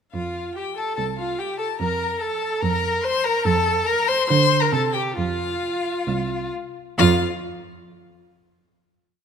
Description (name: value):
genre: quick classical-period movement for string quartet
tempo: 130-146 BPM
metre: 4/4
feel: rubato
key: F major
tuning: A4 = 440 Hz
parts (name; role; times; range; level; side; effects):
- warm violin; melody; 0.1-7.2 s; F5 to C6; -25 LUFS; left 9 dB; none
- rich violin; second line; 0.1-7.2 s; F4 to C5; -27 LUFS; left 3 dB; none
- rich viola; accompaniment; 0.1-7.2 s; F4 to C5; -26 LUFS; right 2 dB; none
- rich cello; bass; 0.1-7.2 s; C2 to D3; -23 LUFS; right 5 dB; none
room: light reverb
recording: none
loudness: -20 LUFS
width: side -7 dB against mid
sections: 0.1-7.0 A section; 7.0-8.7 final note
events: none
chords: 0.1 F5; 1.8 Bb5/F; 4.3 Bbadd9/D; 4.7 C5; 5.2 F5; 7.0 N.C.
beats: | 0.13 0.56 0.97 1.39 | 1.80 2.21 2.62 3.04 | 3.45 3.87 4.30 4.73 | 5.17 5.62 6.07 6.53 | 6.98